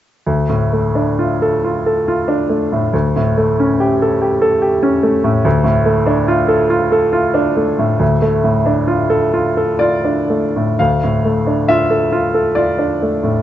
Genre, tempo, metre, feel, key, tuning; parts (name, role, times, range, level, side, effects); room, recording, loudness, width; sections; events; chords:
classical, romantic character piece for solo piano; 58-73 BPM; 3/4; rubato; D minor; A4 = 440 Hz
clear baby grand piano; solo; 0.3-13.4 s; D2 to F5; -13 LUFS; equal
moderate recital hall reverb, RT60 1.6 s; dark, warm production, nothing above 7.9 kHz; -13 LUFS; side -12 dB against mid
0.3-10.8 A section; 10.8-13.4 B section
0.3 Dm; 2.9 A7/D; 5.5 Dm